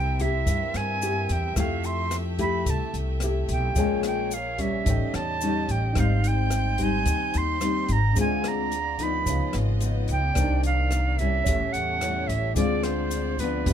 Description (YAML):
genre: bossa nova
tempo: 109 BPM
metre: 4/4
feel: straight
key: unclear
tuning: A4 = 440 Hz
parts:
  - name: bright reedy jazz flute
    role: melody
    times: 0.0-13.7 s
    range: B4 to C6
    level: -28 LUFS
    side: right 5 dB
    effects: none
  - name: nylon-string guitar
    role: accompaniment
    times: 0.0-13.7 s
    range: G2 to G4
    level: -29 LUFS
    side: left 4 dB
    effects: none
  - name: warm grand piano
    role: accompaniment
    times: 0.0-13.7 s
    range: C#4 to G6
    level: -37 LUFS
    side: right 7 dB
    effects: none
  - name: warm studio violin section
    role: sustained chords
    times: 0.0-13.7 s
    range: G3 to G6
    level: -38 LUFS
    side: left 1 dB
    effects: none
  - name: upright bass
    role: bass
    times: 0.0-13.7 s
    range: G1 to G2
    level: -27 LUFS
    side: equal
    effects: none
  - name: open jazz drum kit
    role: drums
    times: 0.2-13.7 s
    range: hi-hat, kick drum, rim click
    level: -30 LUFS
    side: left 1 dB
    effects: none
  - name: egg shaker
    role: percussion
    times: 0.2-13.7 s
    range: none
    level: -39 LUFS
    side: left 8 dB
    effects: none
room: little or no reverb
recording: close, detailed microphones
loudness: -22 LUFS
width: side -9 dB against mid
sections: 0.0-13.7 A section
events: none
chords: 0.0 C7; 1.6 Fmaj9; 3.8 Bbm7; 4.9 A7#11; 6.0 Abmaj7; 8.2 Dm7b5; 9.3 Db9; 10.4 Cm9; 11.5 A7; 12.6 Dm7b5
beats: 0.46 1.01 | 1.56 2.11 2.66 3.21 | 3.76 4.31 4.86 5.41 | 5.96 6.51 7.06 7.61 | 8.16 8.71 9.26 9.81 | 10.36 10.91 11.46 12.01 | 12.56 13.11 13.66